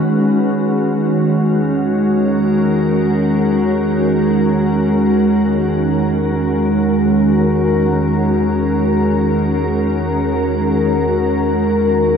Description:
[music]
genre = ambient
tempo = free time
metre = none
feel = none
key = E lydian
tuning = A4 = 440 Hz
[part]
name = glassy FM pad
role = sustained chords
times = 0.0-12.2 s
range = D#3 to A#4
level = -13 LUFS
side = equal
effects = ensemble chorus, built-in reverb
[part]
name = warm sub bass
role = bass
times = 0.0-12.2 s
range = E2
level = -26 LUFS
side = equal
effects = none
[sound]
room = wet huge ambient reverb, RT60 8.1 s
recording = in a vast, echoing space, cassette tape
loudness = -13 LUFS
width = side -7 dB against mid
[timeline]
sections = 0.1-12.2 A section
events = fade-in on sub bass 0.1-12.2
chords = 0.1 Eadd9

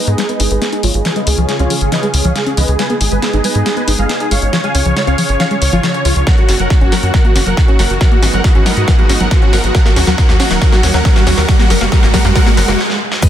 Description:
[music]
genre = uplifting trance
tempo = 138 BPM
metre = 4/4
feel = straight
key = G# dorian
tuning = A4 = 440 Hz
[part]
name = dense compressed supersaw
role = melody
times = 0.0-13.3 s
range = E#4 to G#5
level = -18 LUFS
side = equal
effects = sidechain pumping, low-pass filter, dub echo
[part]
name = analog string pad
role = sustained chords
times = 0.0-13.3 s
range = C#3 to G#4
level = -22 LUFS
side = right 2 dB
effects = ensemble chorus, sidechain pumping
[part]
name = riser and sub drop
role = sound effects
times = 0.8-13.3 s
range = none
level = -23 LUFS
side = right 1 dB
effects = none
[part]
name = tight sequencer bass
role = bass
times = 0.1-12.8 s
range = D#1 to G#2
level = -15 LUFS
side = equal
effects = sidechain pumping
[part]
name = big-room dance drum kit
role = drums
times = 0.1-13.3 s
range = crash cymbal, hi-hat, snare drum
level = -20 LUFS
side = left 1 dB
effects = high-pass filter on snare, high-pass filter on hats, high-pass filter on cymbals
[part]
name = tight sequenced synth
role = arpeggios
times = 0.2-13.3 s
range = E#3 to C#5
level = -20 LUFS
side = left 2 dB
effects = chorus, sidechain pumping, dub echo
[part]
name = electronic kick drum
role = drums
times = 6.3-13.3 s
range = none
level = -10 LUFS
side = equal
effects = none
[part]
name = maracas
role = percussion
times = 13.2-13.3 s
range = none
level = -25 LUFS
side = left 2 dB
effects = none
[sound]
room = light reverb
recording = dense, heavily limited modern master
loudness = -10 LUFS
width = side -11 dB against mid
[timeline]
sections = 0.0-13.2 A section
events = build-up 0.0-13.2; drum fill 0.0-12.8, 12.8-13.2; filter sweep on supersaw synth 0.0-13.2; filter sweep on synth arpeggio sound 0.0-13.2; riser 0.8-12.8; stop 12.8-13.2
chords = 0.0 G#m; 1.1 C#; 2.8 G#m; 4.5 C#; 6.3 F#; 8.0 G#m; 9.7 D#m7; 11.5 F#

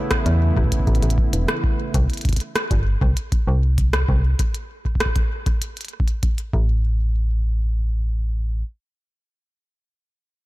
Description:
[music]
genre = IDM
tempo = 98 BPM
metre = 4/4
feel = straight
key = unclear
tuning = A4 = 440 Hz
[part]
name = warm analog pad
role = sustained chords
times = 0.0-1.9 s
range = C#3 to E4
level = -27 LUFS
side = right 2 dB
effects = chorus
[part]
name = electronic kick drum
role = drums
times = 0.1-6.7 s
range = none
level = -21 LUFS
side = equal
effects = none
[part]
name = glitchy drum kit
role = drums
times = 0.1-6.5 s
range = hi-hat, rim click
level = -27 LUFS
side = equal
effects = soft clipping on snare, ping-pong delay
[part]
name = metallic FM bass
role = bass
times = 0.3-8.6 s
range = E1 to E2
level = -19 LUFS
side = equal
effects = none
[sound]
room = digital ambience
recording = blown-out, overdriven recording, overdrive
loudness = -18 LUFS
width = side -18 dB against mid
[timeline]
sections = 0.0-6.8 A section; 6.8-9.3 B section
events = none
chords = 0.0 Aadd9; 1.9 C5; 6.5 N.C.

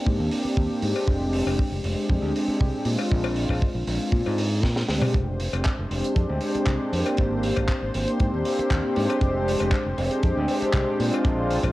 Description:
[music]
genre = nu-disco, nu disco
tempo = 118 BPM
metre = 4/4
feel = straight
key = F dorian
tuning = A4 = 442 Hz
[part]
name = warm analog pad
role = accompaniment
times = 0.0-11.7 s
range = Ab3 to G4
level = -25 LUFS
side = equal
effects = chorus, cassette tape, tape echo
[part]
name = modern bright fingered electric bass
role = bass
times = 0.1-11.7 s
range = F1 to Bb2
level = -27 LUFS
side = equal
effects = none
[part]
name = kick drum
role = drums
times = 0.1-11.7 s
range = none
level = -24 LUFS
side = equal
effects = small room ambience, cassette tape
[part]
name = tight funk drum kit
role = drums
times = 0.3-11.7 s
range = handclaps, hi-hat, snare drum, toms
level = -32 LUFS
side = right 1 dB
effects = small room ambience, cassette tape
[part]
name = cowbell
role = percussion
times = 1.0-11.7 s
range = none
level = -35 LUFS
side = left 6 dB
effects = none
[part]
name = dark studio string section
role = sustained chords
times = 5.1-11.7 s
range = C5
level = -32 LUFS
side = left 1 dB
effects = sidechain pumping, cassette tape
[sound]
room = moderate digital room reverb, RT60 1.2 s, small room ambience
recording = home recording on cassette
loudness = -21 LUFS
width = side -17 dB against mid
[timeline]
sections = 0.0-11.7 A section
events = filter sweep on analog synth pad 0.0-11.7; drum fill 4.6-5.1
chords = 0.0 Abmaj9#11; 1.1 Fm69; 2.9 Bb7; 5.1 Fm69; 7.2 Abmaj9#11; 9.2 Fm69; 11.0 Bb7

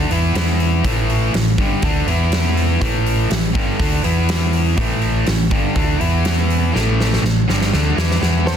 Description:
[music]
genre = hard rock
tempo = 122 BPM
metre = 4/4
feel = straight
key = unclear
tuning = A4 = 444 Hz
[part]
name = distorted electric guitar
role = riff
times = 0.0-8.6 s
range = G2 to E4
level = -22 LUFS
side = left 12 dB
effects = distortion
[part]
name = distorted electric guitar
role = riff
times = 0.0-8.6 s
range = G2 to E4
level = -22 LUFS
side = right 10 dB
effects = overdrive
[part]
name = fingered electric bass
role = bass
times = 0.0-8.6 s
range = G1 to E2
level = -19 LUFS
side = equal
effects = none
[part]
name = huge arena drum kit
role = drums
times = 0.1-8.6 s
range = hi-hat, kick drum, snare drum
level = -21 LUFS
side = equal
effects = none
[part]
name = steel pan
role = melody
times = 8.5-8.6 s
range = C5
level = -23 LUFS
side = right 1 dB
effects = none
[part]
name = octave-fuzz lead guitar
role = second line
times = 8.5-8.6 s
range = A4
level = -27 LUFS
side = right 1 dB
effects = distortion
[sound]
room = light reverb, small room ambience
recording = dense, heavily limited modern master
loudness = -15 LUFS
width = side -8 dB against mid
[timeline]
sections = 0.0-8.6 A section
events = drum fill 6.7-8.6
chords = 0.4 E5; 0.8 A5; 2.1 E5; 2.8 A5; 4.0 E5; 4.8 A5; 6.0 E5; 6.7 A5

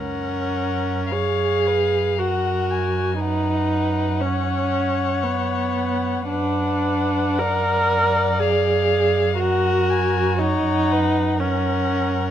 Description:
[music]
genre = classical, slow romantic movement for string quartet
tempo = 51-61 BPM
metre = 3/4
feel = rubato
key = F# major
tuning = A4 = 440 Hz
[part]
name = muted violin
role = melody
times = 0.0-12.3 s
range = E#5 to G#5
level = -27 LUFS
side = left 12 dB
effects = none
[part]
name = muted violin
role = second line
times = 0.0-12.3 s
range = A#4 to D5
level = -28 LUFS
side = left 6 dB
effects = none
[part]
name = muted viola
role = accompaniment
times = 0.0-12.3 s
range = B3 to A#4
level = -21 LUFS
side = right 2 dB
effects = none
[part]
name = muted cello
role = bass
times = 0.0-12.3 s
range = F#2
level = -25 LUFS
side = right 3 dB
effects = none
[sound]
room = moderate recital hall reverb, RT60 1.4 s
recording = close, detailed microphones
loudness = -18 LUFS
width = side -10 dB against mid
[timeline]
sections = 0.0-12.3 A section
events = none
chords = 0.0 F#; 3.2 B/F#; 6.3 Bm/F#; 9.4 F#

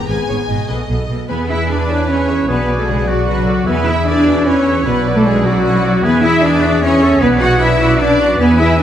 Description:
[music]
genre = cinematic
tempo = 101 BPM (dotted quarters)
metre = 6/8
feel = straight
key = E mixolydian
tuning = A4 = 439 Hz
[part]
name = clear symphonic violin section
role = melody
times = 0.0-8.8 s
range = D5 to A#5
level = -29 LUFS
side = left 3 dB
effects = none
[part]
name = clear symphonic violin section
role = second line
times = 0.0-8.8 s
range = F#4 to F#5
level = -25 LUFS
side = left 2 dB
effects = none
[part]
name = warm symphonic viola section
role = accompaniment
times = 0.0-8.8 s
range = B3 to D5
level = -24 LUFS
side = right 2 dB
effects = none
[part]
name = concert harp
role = arpeggios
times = 0.0-8.8 s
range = G#2 to G#4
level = -24 LUFS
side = left 9 dB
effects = none
[part]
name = rich symphonic cello section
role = bass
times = 0.1-8.8 s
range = G#2 to F#4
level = -16 LUFS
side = right 1 dB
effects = none
[part]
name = warm symphonic double bass section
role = bass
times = 0.1-8.8 s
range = G#1 to E2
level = -19 LUFS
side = right 3 dB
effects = none
[part]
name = hollow concert flute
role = second line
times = 1.3-8.8 s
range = B4 to G#5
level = -25 LUFS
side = left 2 dB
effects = none
[part]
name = mellow clarinet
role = second line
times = 1.3-8.8 s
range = E4 to B4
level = -25 LUFS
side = left 1 dB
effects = none
[part]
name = dark French horn section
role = sustained chords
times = 1.3-8.8 s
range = F#3 to F#4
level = -21 LUFS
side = left 4 dB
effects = none
[part]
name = warm trumpet section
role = stabs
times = 1.3-8.8 s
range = D4 to F#5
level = -21 LUFS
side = equal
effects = none
[part]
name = warm oboe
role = second line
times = 1.9-8.8 s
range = E4 to B4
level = -24 LUFS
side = right 1 dB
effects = none
[sound]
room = moderate scoring stage reverb, RT60 1.9 s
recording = none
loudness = -11 LUFS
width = side -10 dB against mid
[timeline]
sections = 0.0-1.3 A section; 1.3-8.8 B section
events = none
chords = 0.1 G#m; 0.7 B7; 1.3 E; 2.5 Bm; 3.7 E; 4.9 Bm; 6.0 E; 7.2 Bm

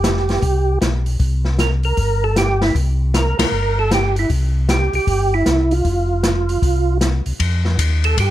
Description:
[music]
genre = soul jazz organ trio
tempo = 155 BPM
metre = 4/4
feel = swing 64% on 8ths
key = F major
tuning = A4 = 439 Hz
[part]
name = percussive tonewheel organ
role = melody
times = 0.0-8.3 s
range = E4 to Bb4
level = -20 LUFS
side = right 3 dB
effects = slow rotary speaker, chorus vibrato, plate reverb
[part]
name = mellow tonewheel organ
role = bass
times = 0.0-8.3 s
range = F1 to G2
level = -18 LUFS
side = equal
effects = slow rotary speaker
[part]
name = open jazz drum kit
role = drums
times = 0.0-8.3 s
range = hi-hat, kick drum, ride cymbal, snare drum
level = -21 LUFS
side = left 1 dB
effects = none
[sound]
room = light reverb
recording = none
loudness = -15 LUFS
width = side -13 dB against mid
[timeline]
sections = 0.0-7.4 A section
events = band accent 3.3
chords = 0.0 Fsus2; 1.2 C7; 5.8 F5; 7.4 Fsus2

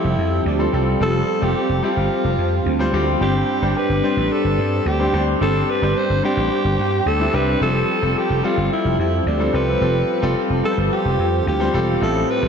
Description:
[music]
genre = pop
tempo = 109 BPM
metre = 4/4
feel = straight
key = unclear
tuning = A4 = 440 Hz
[part]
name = raspy alto saxophone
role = melody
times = 0.0-12.5 s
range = D4 to C5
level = -22 LUFS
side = right 1 dB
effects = analog delay
[part]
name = clear concert grand piano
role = accompaniment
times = 0.0-12.5 s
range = G2 to C5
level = -22 LUFS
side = left 2 dB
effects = none
[part]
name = ensemble organ-string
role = sustained chords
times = 0.0-12.5 s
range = F3 to A4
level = -24 LUFS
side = equal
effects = phaser, ensemble chorus
[part]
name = vintage slap bass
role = bass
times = 0.0-12.5 s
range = E1 to G2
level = -21 LUFS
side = equal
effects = none
[sound]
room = wet lush hall reverb, RT60 2.5 s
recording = dreamy mix soaked in reverb, nothing above 7.8 kHz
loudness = -16 LUFS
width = side -6 dB against mid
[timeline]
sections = 0.0-12.0 A section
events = none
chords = 0.0 Fadd9; 3.2 Gsus4; 7.6 Fadd9

